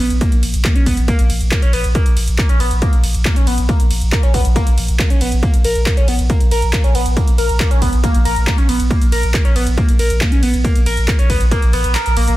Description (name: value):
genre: driving peak-time techno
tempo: 138 BPM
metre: 4/4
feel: straight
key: Bb phrygian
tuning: A4 = 440 Hz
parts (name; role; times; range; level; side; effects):
- overdriven synth lead; riff; 0.0-12.3 s; Bb3 to Bb4; -20 LUFS; equal; distortion, phaser, sidechain pumping, digital delay
- saturated sub bass; bass; 0.0-12.4 s; Bb1; -18 LUFS; equal; overdrive, sidechain pumping, low-pass filter
- punchy analog drum machine; drums; 0.1-12.4 s; handclaps, hi-hat, ride cymbal; -24 LUFS; right 1 dB; overdrive, sidechain pumping on hats, sidechain pumping on cymbals
- electronic kick drum; drums; 0.2-11.6 s; none; -15 LUFS; equal; none
room: little or no reverb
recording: dense, heavily limited modern master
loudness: -12 LUFS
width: side -16 dB against mid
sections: 0.0-12.4 A section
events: drop 0.0-12.4; kick drops out 11.9-12.4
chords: none